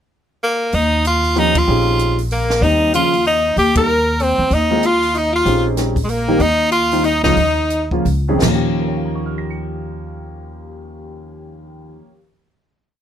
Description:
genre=modal jazz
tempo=161-191 BPM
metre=3/4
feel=swing 61% on 8ths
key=Eb mixolydian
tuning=A4 = 440 Hz
part: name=edgy tenor saxophone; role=melody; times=0.4-7.9 s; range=Ab3 to Bb4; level=-16 LUFS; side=right 1 dB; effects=none
part: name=bright alto saxophone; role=second line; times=0.7-7.9 s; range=Ab3 to Bb4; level=-21 LUFS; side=left 4 dB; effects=none
part: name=upright bass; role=bass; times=0.7-12.0 s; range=Bb1 to Fb2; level=-20 LUFS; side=equal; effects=none
part: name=compact cocktail drum kit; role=drums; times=0.7-8.5 s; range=crash cymbal, hi-hat, kick drum, ride cymbal, snare drum, toms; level=-25 LUFS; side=equal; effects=none
part: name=warm grand piano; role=accompaniment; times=1.4-12.5 s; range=Eb2 to Db7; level=-21 LUFS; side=equal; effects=none
room=light reverb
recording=close, detailed microphones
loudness=-14 LUFS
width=side -9 dB against mid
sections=0.0-0.7 pickup bar; 0.7-8.4 A section; 8.4-10.7 final chord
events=band accent 1.5, 3.7; slowing down 6.4-8.4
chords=0.0 N.C.; 0.7 Eb13; 2.6 Cm/Eb; 4.5 Eb13; 6.4 Cm (rootless); 8.4 Eb9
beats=0.09 0.41 | 0.73 1.04 1.36 | 1.68 1.99 2.31 | 2.62 2.94 3.25 | 3.56 3.88 4.20 | 4.51 4.82 5.14 | 5.45 5.77 6.08 | 6.40 6.72 7.04 | 7.37 7.70 8.05 | 8.42 8.79 9.16 | 9.53 9.91 10.28

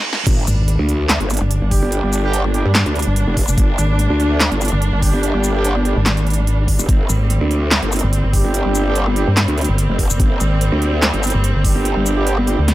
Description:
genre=heavy wobble dubstep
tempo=145 BPM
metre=4/4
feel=swing 54% on 16ths, half-time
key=G phrygian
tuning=A4 = 441 Hz
part: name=reverse cymbal and sub drop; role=sound effects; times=0.0-1.9 s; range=none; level=-26 LUFS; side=right 1 dB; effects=none
part: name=big-room dance drum kit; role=drums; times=0.1-12.7 s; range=crash cymbal, handclaps, hi-hat, shaker, snare drum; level=-20 LUFS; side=equal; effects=overdrive
part: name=clear chamber string section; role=sustained chords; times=0.3-12.7 s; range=G3 to D4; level=-24 LUFS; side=right 2 dB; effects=sidechain pumping
part: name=growl bass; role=bass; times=0.3-12.6 s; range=F1 to D2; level=-18 LUFS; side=equal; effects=chorus, overdrive
part: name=electronic kick drum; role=drums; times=0.3-11.7 s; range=none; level=-16 LUFS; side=equal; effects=overdrive
part: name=pulsing pluck wobble bass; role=bass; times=0.5-12.7 s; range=F1 to G2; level=-16 LUFS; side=equal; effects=chorus, overdrive
part: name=mellow brass ensemble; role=stabs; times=1.7-12.6 s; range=G3 to G4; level=-23 LUFS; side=right 3 dB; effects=tape echo
room=digital ambience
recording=high-pass filter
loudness=-14 LUFS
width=side -16 dB against mid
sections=0.3-12.7 A section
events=drum fill 0.0; reverse cymbal 0.0; stop 0.0; drop 0.3-12.7; impact 0.3-1.9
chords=0.3 Gm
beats=| 0.27 0.68 1.09 1.51 | 1.92 2.33 2.75 3.16 | 3.58 3.99 4.40 4.82 | 5.23 5.65 6.06 6.47 | 6.89 7.30 7.71 8.13 | 8.54 8.96 9.37 9.78 | 10.20 10.61 11.03 11.44 | 11.85 12.27 12.68

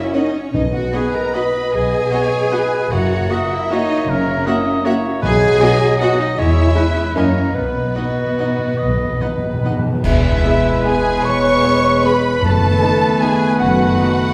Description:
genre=classical, orchestral ballroom waltz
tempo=136-170 BPM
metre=3/4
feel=rubato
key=B major, E major from 10.0 s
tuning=A4 = 440 Hz
part: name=rich studio violin section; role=melody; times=0.0-14.3 s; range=B4 to C#6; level=-28 LUFS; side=equal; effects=none
part: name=clear oboe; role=second line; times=0.0-14.3 s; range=F#4 to D#5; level=-28 LUFS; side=equal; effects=none
part: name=mellow hollow concert flute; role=second line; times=0.0-14.3 s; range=C#5 to C#6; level=-27 LUFS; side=equal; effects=none
part: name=mellow bassoon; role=accompaniment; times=0.0-14.3 s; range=F#3 to B3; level=-26 LUFS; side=equal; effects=none
part: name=warm studio viola section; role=accompaniment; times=0.0-14.1 s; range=G#3 to G#4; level=-28 LUFS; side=equal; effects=none
part: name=rich studio cello section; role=bass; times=0.0-13.9 s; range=E2 to B4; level=-24 LUFS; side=equal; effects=none
part: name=warm studio violin section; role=second line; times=0.1-14.3 s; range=E4 to G#5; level=-26 LUFS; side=equal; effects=none
part: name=dark French horn section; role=sustained chords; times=0.1-14.3 s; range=G#3 to B4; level=-26 LUFS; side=equal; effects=none
part: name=warm studio double bass section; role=bass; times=0.5-13.9 s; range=E1 to F#2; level=-24 LUFS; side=equal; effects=none
part: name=timpani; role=percussion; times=0.5-1.1, 5.2-10.0, 12.4-13.0 s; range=F#2 to B2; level=-26 LUFS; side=equal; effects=none
part: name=cymbal swell, clash cymbals and concert bass drum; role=percussion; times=7.5-10.8 s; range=none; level=-25 LUFS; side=equal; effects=none
part: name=mellow trombone section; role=sustained chords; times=10.0-14.3 s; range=D#3 to A3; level=-25 LUFS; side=equal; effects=none
room=wet recital hall reverb, RT60 1.6 s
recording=heard from further back in the room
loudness=-16 LUFS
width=mono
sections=0.0-10.0 A section; 10.0-14.3 B section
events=timpani fill 7.6-10.0; band accent 10.0-10.4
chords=0.0 F# (rootless); 0.5 B; 2.9 F#7; 5.2 B; 6.4 C#m/E; 7.2 F#69; 7.6 B; 10.0 E; 12.4 B7/F#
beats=0.13 | 0.53 0.93 1.34 | 1.72 2.12 2.52 | 2.90 3.29 3.70 | 4.08 4.46 4.86 | 5.23 5.61 6.00 | 6.38 6.75 7.16 | 7.55 7.96 8.39 | 8.79 9.21 9.64 | 10.04 10.44 10.85 | 11.24 11.63 12.04 | 12.42 12.81 13.21 | 13.59 13.98

